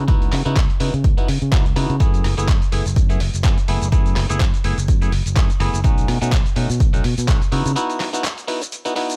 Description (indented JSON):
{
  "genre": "filtered disco house",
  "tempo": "125 BPM",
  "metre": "4/4",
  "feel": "swing 56% on 16ths",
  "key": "F# dorian",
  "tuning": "A4 = 436 Hz",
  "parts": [
    { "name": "bright clav", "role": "accompaniment", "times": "0.0-9.2 s", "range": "A3 to G#4", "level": "-28 LUFS", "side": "equal", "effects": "phaser, vintage 12-bit sampler grit, sidechain pumping, low-pass filter" },
    { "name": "overdriven fingered electric bass", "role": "bass", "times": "0.0-7.7 s", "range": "F#1 to C#3", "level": "-24 LUFS", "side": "equal", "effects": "tube saturation, sidechain pumping, low-pass filter" },
    { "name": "dusty soul sampler-style drum kit", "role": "drums", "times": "0.1-9.2 s", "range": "handclaps, hi-hat, rim click, shaker", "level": "-30 LUFS", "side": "equal", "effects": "overdrive, sidechain pumping on hats, sidechain pumping on perc" },
    { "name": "electronic kick drum", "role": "drums", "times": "0.1-7.4 s", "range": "none", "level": "-20 LUFS", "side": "equal", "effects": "none" },
    { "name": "egg shaker", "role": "percussion", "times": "2.0-9.2 s", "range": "none", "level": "barely audible", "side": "none", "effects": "none" }
  ],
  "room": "digital ambience",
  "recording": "none",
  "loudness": "-18 LUFS",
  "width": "mono",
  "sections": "0.0-9.2 A section",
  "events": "filter sweep 0.0-9.2; break 7.8-9.2",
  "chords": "0.0 C#m11; 2.0 F#m11; 5.8 B9; 7.5 C#m11 (rootless)"
}